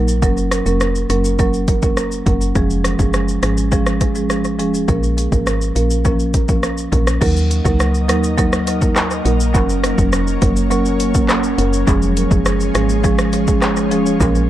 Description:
dancehall; 103 BPM; 4/4; straight; Eb minor; A4 = 440 Hz
marimba with medium mallets; accompaniment; 0.0-14.5 s; F3 to Bb4; -18 LUFS; right 1 dB; analog delay
woody FM bass; bass; 0.0-14.5 s; F1 to Eb2; -19 LUFS; equal
deep house drum kit; drums; 0.1-14.5 s; crash cymbal, handclaps, hi-hat, kick drum, rim click, shaker; -18 LUFS; equal; vintage 12-bit sampler grit, analog delay
ethereal airy pad; sustained chords; 7.6-14.5 s; F3 to Eb5; -22 LUFS; equal; ensemble chorus, built-in reverb, sidechain pumping
light reverb; echo-heavy mix; -14 LUFS; side -13 dB against mid
0.0-7.2 A section; 7.2-14.5 B section
0.2 Gb; 2.6 Db/F; 4.9 Bbm; 7.2 Ebm; 9.5 Gb; 11.9 Db/F

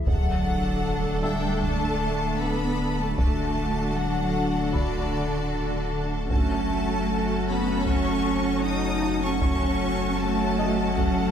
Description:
cinematic, hybrid orchestral and electronic film score; 77 BPM; 4/4; straight; A4 = 438 Hz
warbly tape-like pad; sustained chords; 0.0-11.3 s; A3 to A5; -32 LUFS; left 1 dB; chorus, built-in reverb
punchy sub bass; bass; 0.0-11.3 s; D1 to F#1; -32 LUFS; equal
felt-muted upright piano; texture; 0.0-11.3 s; D#5 to E6; -40 LUFS; equal
bright symphonic violin section; melody; 0.1-11.3 s; D5 to D#6; -33 LUFS; left 3 dB
bright symphonic violin section; second line; 0.1-11.3 s; A4 to A5; -35 LUFS; left 1 dB
clear symphonic viola section; accompaniment; 0.1-11.3 s; C#4 to A4; -32 LUFS; right 3 dB
mellow French horn section; sustained chords; 0.1-11.3 s; D3 to F#3; -30 LUFS; left 3 dB
rich symphonic cello section; bass; 0.1-11.3 s; D3 to D#4; -30 LUFS; right 2 dB
taiko ensemble; drums; 0.1-11.3 s; -28 LUFS; equal
sub drop; sound effects; 0.1-3.2 s; -33 LUFS; equal
wet scoring stage reverb, RT60 1.8 s; heard from further back in the room; -22 LUFS; side -8 dB against mid
0.1-11.3 A section
impact 0.1-3.2
0.1 D; 6.3 F#m

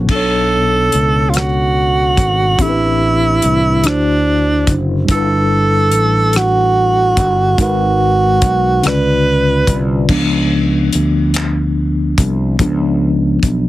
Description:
slow six-eight R&B; 48 BPM (dotted quarters); 6/8; straight; A4 = 440 Hz
mellow tine electric piano; accompaniment; 0.0-13.7 s; A2 to D5; -18 LUFS; left 1 dB; medium stereo tremolo
fretless electric bass; bass; 0.0-13.7 s; F#1 to D2; -16 LUFS; equal
breathy tenor saxophone; melody; 0.1-9.8 s; D4 to B4; -14 LUFS; right 2 dB; slapback echo
damped 70s drum kit; drums; 0.1-13.6 s; crash cymbal, handclaps, hi-hat, kick drum, rim click; -17 LUFS; left 1 dB
little or no reverb; heavily compressed radio sound, multiband compression; -11 LUFS; side -16 dB against mid
0.1-10.1 A section; 10.1-13.7 B section
tine electric piano solo 10.1-13.7
0.1 Bm9; 2.6 Am11; 3.8 D9; 5.1 G69; 7.6 G#m9; 8.8 C#7b9

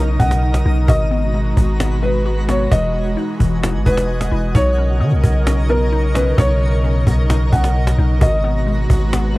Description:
hip hop, atmospheric cloud-rap; 131 BPM; 4/4; half-time; B major; A4 = 441 Hz
felt-muted upright piano; melody; 0.0-9.4 s; A#4 to F#5; -22 LUFS; equal; low-pass filter, cassette tape, analog delay
airy breathy pad; sustained chords; 0.0-9.4 s; B2 to D#5; -23 LUFS; equal; chorus
hollow square pluck; arpeggios; 0.0-9.4 s; E3 to F#4; -27 LUFS; left 6 dB; chorus, low-pass filter, analog delay
long sustained 808-style bass; bass; 0.0-9.4 s; E1 to D#3; -16 LUFS; equal
twinkling granular texture; texture; 0.0-9.4 s; D#4 to A#5; -29 LUFS; right 1 dB; built-in reverb
cajon; drums; 0.2-9.4 s; -19 LUFS; equal
little or no reverb; home recording on cassette; -14 LUFS; side -19 dB against mid
0.0-9.4 A section
0.0 Bmaj9; 0.9 G#m9; 2.7 Emaj9; 4.5 Bmaj9; 8.2 G#m9

